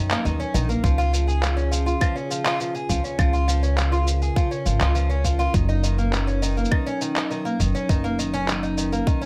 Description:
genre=folktronica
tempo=102 BPM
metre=4/4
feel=straight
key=F# major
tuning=A4 = 440 Hz
part: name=warbly tape-like pad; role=sustained chords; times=0.0-9.3 s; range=C#3 to A#4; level=-32 LUFS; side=equal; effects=chorus, built-in reverb
part: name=fingerpicked twelve-string acoustic guitar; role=arpeggios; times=0.0-9.3 s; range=D#3 to G#4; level=-29 LUFS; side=equal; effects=digital delay
part: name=upright bass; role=bass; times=0.0-9.0 s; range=F#1 to F#2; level=-25 LUFS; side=equal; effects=none
part: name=electronic handclaps, shaker and claves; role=drums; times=0.1-9.3 s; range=none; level=-31 LUFS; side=equal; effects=overdrive
part: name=electronic kick drum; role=drums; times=0.8-9.2 s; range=none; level=-24 LUFS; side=equal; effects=none
room=light reverb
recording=none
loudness=-22 LUFS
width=mono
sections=0.0-9.3 A section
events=none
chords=0.0 F#6; 0.8 C#; 5.5 F#6

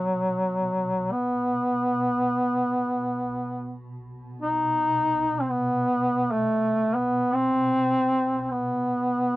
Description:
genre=caucasian folk, Caucasian lament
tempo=free time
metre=none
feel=none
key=unclear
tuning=A4 = 440 Hz
part: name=mellow duduk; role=melody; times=0.0-9.4 s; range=F#3 to D#4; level=-22 LUFS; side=equal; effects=cassette tape
part: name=granular cloud pad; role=drone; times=0.0-9.4 s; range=B2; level=-36 LUFS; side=equal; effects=built-in reverb, cassette tape
room=light reverb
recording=home recording on cassette, nothing above 7.8 kHz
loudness=-22 LUFS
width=side -17 dB against mid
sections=0.0-9.4 A section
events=none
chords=none

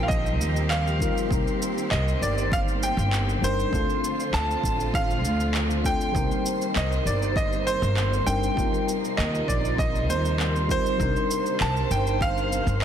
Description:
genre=sunset chillout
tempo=99 BPM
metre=4/4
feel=straight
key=C dorian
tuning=A4 = 439 Hz
part: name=bright concert grand piano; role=melody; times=0.0-12.8 s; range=C5 to A5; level=-28 LUFS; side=right 1 dB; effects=tape echo
part: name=mellow FM electric piano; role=accompaniment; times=0.0-12.8 s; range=G3 to Bb4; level=-30 LUFS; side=moving between left 5 dB and right 6 dB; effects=chorus, auto-pan, tape echo
part: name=dark symphonic string section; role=sustained chords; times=0.0-12.8 s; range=C3 to C5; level=-33 LUFS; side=right 2 dB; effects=none
part: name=upright bass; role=bass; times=0.0-12.8 s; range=G1 to Eb2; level=-26 LUFS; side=equal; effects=none
part: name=wind-like tuned noise texture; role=texture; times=0.0-12.8 s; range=C5 to C6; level=-37 LUFS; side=equal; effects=built-in reverb
part: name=electronic cabasa and handclaps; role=drums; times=0.1-12.8 s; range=none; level=-33 LUFS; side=right 1 dB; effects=overdrive
part: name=electronic kick drum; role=drums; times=0.1-12.3 s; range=none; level=-28 LUFS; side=equal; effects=overdrive
room=light reverb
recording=dense, heavily limited modern master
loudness=-22 LUFS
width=side -9 dB against mid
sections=0.0-12.8 A section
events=none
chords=0.0 Eb69; 1.3 Cm9; 3.7 Dm7; 6.2 Cm9; 8.6 Eb69; 11.0 Cm9

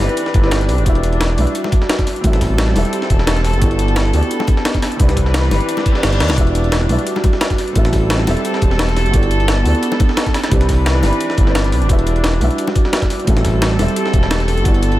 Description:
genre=liquid drum and bass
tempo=174 BPM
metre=4/4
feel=swing 53% on 16ths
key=unclear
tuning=A4 = 439 Hz
part: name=vibraphone with soft mallets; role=melody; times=0.0-15.0 s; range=D4 to G4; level=-24 LUFS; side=right 1 dB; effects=analog delay
part: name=felt-muted upright piano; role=accompaniment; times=0.0-15.0 s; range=G3 to E5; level=-23 LUFS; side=right 1 dB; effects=analog delay
part: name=warm studio string section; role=sustained chords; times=0.0-15.0 s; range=E3 to B4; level=-23 LUFS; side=left 1 dB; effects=sidechain pumping
part: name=smooth synth bass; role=bass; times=0.0-15.0 s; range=E1 to E2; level=-16 LUFS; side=equal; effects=none
part: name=breakbeat sampler-style drum kit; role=drums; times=0.0-14.9 s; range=hi-hat, snare drum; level=-23 LUFS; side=left 1 dB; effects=none
part: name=breakbeat sampler-style drum kit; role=drums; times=0.0-15.0 s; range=hi-hat, snare drum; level=-26 LUFS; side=equal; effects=high-pass filter on hats, high-pass filter on snare
part: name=electronic kick drum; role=drums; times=0.3-14.7 s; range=none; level=-16 LUFS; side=equal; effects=none
part: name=bongos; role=percussion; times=1.6-13.9 s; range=none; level=-30 LUFS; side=left 4 dB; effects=none
part: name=reverse cymbal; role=sound effects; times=5.8-6.4 s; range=none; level=-32 LUFS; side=left 3 dB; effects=none
room=light reverb, studio reverb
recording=none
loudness=-13 LUFS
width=side -15 dB against mid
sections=0.0-15.0 A section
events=reverse cymbal 5.8-6.4; drum fill 6.2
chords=0.0 Cmaj9; 0.9 Em9; 2.2 Am7; 3.6 Gmaj9; 5.0 Cmaj9; 6.4 Em9; 7.8 Am7; 9.1 Gmaj9; 10.5 Cmaj9; 11.9 Em9; 13.3 Am7

